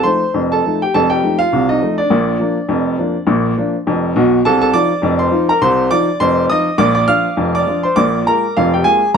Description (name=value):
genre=ragtime piano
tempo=102 BPM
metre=2/4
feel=swing 57% on 16ths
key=Bb major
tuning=A4 = 436 Hz
part: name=warm upright piano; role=solo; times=0.0-9.2 s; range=F1 to F6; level=-12 LUFS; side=equal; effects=none
room=light reverb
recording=close, detailed microphones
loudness=-12 LUFS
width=side -6 dB against mid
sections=0.0-9.2 A section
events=none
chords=0.0 F7; 2.1 Bb; 4.4 F7; 6.8 Bb; 8.0 Bb7